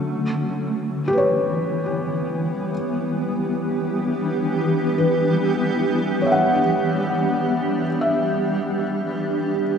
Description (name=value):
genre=ambient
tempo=free time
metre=none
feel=none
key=unclear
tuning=A4 = 440 Hz
part: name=granular cloud pad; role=sustained chords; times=0.0-9.8 s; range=E3 to G4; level=-21 LUFS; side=equal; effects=built-in reverb
part: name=felt-muted upright piano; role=arpeggios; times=1.1-9.8 s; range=G4 to F#5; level=-24 LUFS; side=left 1 dB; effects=ping-pong delay
room=wet cathedral reverb, RT60 5.1 s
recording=cassette tape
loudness=-19 LUFS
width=side -7 dB against mid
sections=0.0-9.8 A section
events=fade-out 5.6-9.8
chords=0.0 Em7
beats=free time